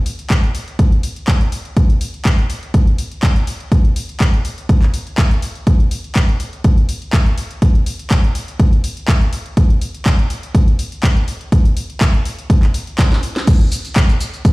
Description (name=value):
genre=house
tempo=123 BPM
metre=4/4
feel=swing 53% on 16ths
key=none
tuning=none
part: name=house drum kit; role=drums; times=0.1-14.5 s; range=crash cymbal, handclaps, hi-hat, shaker, snare drum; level=-24 LUFS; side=left 1 dB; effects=overdrive
part: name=electronic kick drum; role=drums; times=0.3-14.5 s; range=none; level=-12 LUFS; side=equal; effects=overdrive
room=little or no reverb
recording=played on a big sound system in a bare room, stone room reverb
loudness=-13 LUFS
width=side -22 dB against mid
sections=0.0-13.5 A section; 13.5-14.5 B section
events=drum fill 13.0-13.5; drop 13.5-14.5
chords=none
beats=0.30 0.79 1.28 | 1.77 2.25 2.74 3.23 | 3.72 4.21 4.69 5.18 | 5.67 6.16 6.64 7.13 | 7.62 8.11 8.60 9.08 | 9.57 10.06 10.55 11.04 | 11.52 12.01 12.50 12.99 | 13.47 13.96 14.45